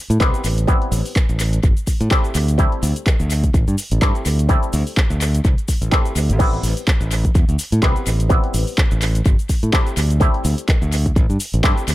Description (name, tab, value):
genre	filtered disco house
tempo	126 BPM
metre	4/4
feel	swing 57% on 16ths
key	A minor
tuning	A4 = 440 Hz
part	auto-wah clav	accompaniment	0.0-11.9 s	G3 to E4	-23 LUFS	left 1 dB	overdrive, phaser, vintage 12-bit sampler grit, sidechain pumping
part	modern bright fingered electric bass	bass	0.1-11.9 s	G1 to A2	-18 LUFS	equal	sidechain pumping
part	punchy analog drum machine	drums	0.1-11.9 s	crash cymbal, handclaps, hi-hat, shaker	-25 LUFS	equal	sidechain pumping on hats, sidechain pumping on perc, sidechain pumping on cymbals, tape echo
part	electronic kick drum	drums	0.2-11.7 s	none	-16 LUFS	equal	none
room	little or no reverb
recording	echo-heavy mix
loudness	-15 LUFS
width	side -16 dB against mid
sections	0.0-11.9 A section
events	none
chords	0.0 Am7; 2.4 D7sus4; 6.4 Am7; 10.0 D7sus4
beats	0.21 | 0.69 1.16 1.64 2.11 | 2.59 3.07 3.54 4.02 | 4.50 4.97 5.45 5.92 | 6.40 6.88 7.35 7.83 | 8.30 8.78 9.26 9.73 | 10.21 10.69 11.16 11.64